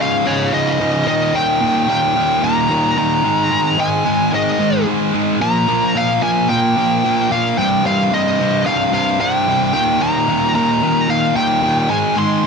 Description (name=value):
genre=metal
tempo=111 BPM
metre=4/4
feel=straight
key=unclear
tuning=A4 = 439 Hz
part: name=high-gain lead guitar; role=melody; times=0.0-12.5 s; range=Db5 to C6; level=-17 LUFS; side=left 1 dB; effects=distortion
part: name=high-gain distorted guitar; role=riff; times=0.0-12.5 s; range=C2 to Bb3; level=-16 LUFS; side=equal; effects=distortion
room=light reverb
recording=dark, warm production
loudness=-14 LUFS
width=side -5 dB against mid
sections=0.0-1.1 A section; 1.1-12.5 A section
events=none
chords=0.0 Db; 1.1 Eb; 3.2 Ab5; 5.4 Bb5; 7.6 Cm; 9.7 Eb; 11.9 Ab